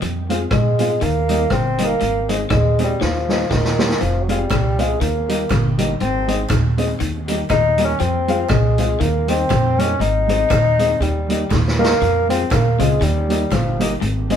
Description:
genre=ska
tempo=120 BPM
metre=4/4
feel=swing 57% on 8ths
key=unclear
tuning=A4 = 438 Hz
part: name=clean electric guitar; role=riff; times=0.0-14.2 s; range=F2 to Ab3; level=-28 LUFS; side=left 4 dB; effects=dub echo
part: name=upright bass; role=bass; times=0.0-14.4 s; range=F1 to Ab2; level=-23 LUFS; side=equal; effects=none
part: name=street-band drum kit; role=drums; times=0.0-14.4 s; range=hi-hat, kick drum, rim click, snare drum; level=-20 LUFS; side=right 1 dB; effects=none
part: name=mellow electric guitar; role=accompaniment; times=0.3-14.4 s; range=G3 to Ab4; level=-26 LUFS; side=right 2 dB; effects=spring reverb, dub echo
part: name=dark upright piano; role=stabs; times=0.3-14.4 s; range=Eb4 to F5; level=-27 LUFS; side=left 3 dB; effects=none
part: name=mellow bassoon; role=melody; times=0.5-14.4 s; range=Eb3 to Eb4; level=-20 LUFS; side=left 1 dB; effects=none
part: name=group handclap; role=percussion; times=4.5-13.6 s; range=none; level=-37 LUFS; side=right 3 dB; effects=dub echo
room=moderate studio reverb, RT60 0.8 s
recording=band playing live in one room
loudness=-15 LUFS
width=side -8 dB against mid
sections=0.0-14.4 A section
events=bassoon solo 0.0-14.4; drum fill 3.0-4.0, 11.5-12.0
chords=0.0 Fm; 1.0 Eb; 2.0 Ab; 3.0 Eb; 4.0 Fm; 5.0 Eb; 6.0 Ab; 7.0 Eb; 8.0 Fm; 9.0 Eb; 10.0 Ab; 11.0 Eb; 12.0 Fm; 13.0 Eb

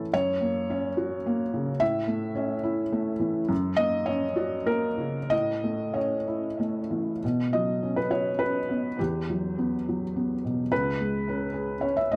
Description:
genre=neoclassical minimalist piano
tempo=91-109 BPM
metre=3/4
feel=rubato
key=B major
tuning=A4 = 440 Hz
part: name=felt-muted upright piano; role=solo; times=0.0-12.2 s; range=C#2 to E5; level=-28 LUFS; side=equal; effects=analog delay
room=moderate small room reverb, RT60 0.6 s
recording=none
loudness=-28 LUFS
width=mono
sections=0.0-7.2 A section; 7.2-12.2 B section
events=none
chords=0.1 F#; 1.8 A; 3.5 F#; 5.3 A; 7.2 Bsus2; 9.0 Emadd9; 10.7 C#5

